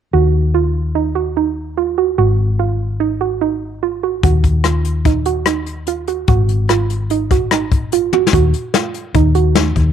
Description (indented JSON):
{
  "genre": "progressive instrumental, band music in an uneven meter",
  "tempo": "146 BPM",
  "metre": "5/4",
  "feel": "straight",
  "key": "unclear",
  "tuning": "A4 = 440 Hz",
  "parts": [
    { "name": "soft round pluck", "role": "arpeggios", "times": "0.1-9.9 s", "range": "Eb4 to Gb4", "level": "-18 LUFS", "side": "right 12 dB", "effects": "chorus" },
    { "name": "hollow-body short-scale fingered electric bass", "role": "bass", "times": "0.1-9.9 s", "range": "Ab1 to Eb2", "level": "-17 LUFS", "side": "left 1 dB", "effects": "none" },
    { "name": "jazz brush drum kit", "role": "drums", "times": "4.2-9.9 s", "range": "hi-hat, kick drum, rim click, snare drum, toms", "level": "-17 LUFS", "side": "left 4 dB", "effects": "none" }
  ],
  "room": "light reverb, studio reverb",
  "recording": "1960s-style stereo",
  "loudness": "-13 LUFS",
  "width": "side -8 dB against mid",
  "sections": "0.1-8.3 A section; 8.3-9.9 B section",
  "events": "drum fill 8.1",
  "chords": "0.1 Ebm; 2.2 Ab5; 4.2 Ebm; 6.3 Ab5; 8.3 Ebm",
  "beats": "| 0.13 0.54 0.95 1.36 1.77 | 2.18 2.60 3.00 3.42 3.83 | 4.24 4.65 5.06 5.47 5.88 | 6.29 6.70 7.10 7.51 7.92 | 8.33 8.74 9.15 9.55"
}